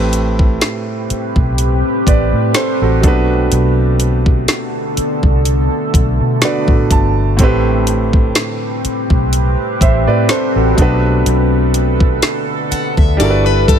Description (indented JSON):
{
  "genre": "contemporary R&B",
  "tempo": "62 BPM",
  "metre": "4/4",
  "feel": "swing 54% on 16ths",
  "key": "A dorian",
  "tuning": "A4 = 442 Hz",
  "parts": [
    { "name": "clear concert grand piano", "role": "accompaniment", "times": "0.0-13.8 s", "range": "A2 to A5", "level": "-18 LUFS", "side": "right 3 dB", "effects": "none" },
    { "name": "deep dark ambient pad", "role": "sustained chords", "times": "0.7-13.8 s", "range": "D3 to B4", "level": "-19 LUFS", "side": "left 1 dB", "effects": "chorus, built-in reverb" },
    { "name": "vintage muted fingered electric bass", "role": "bass", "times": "0.0-13.8 s", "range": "G1 to B2", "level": "-15 LUFS", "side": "equal", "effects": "none" },
    { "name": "smooth R&B drum kit", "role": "drums", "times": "0.1-13.8 s", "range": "hi-hat, kick drum, snare drum", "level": "-14 LUFS", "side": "equal", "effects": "none" },
    { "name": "picked plugged-in steel-string acoustic guitar", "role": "arpeggios", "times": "12.7-13.8 s", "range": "D4 to F#5", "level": "-17 LUFS", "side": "left 9 dB", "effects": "none" }
  ],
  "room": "little or no reverb",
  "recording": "none",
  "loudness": "-11 LUFS",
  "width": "side -8 dB against mid",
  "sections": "0.0-13.8 A section",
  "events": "grand piano fill 5.9-7.4",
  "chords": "0.0 Am9; 3.0 Bm7; 7.4 Am9; 10.8 Bm7; 13.2 G69"
}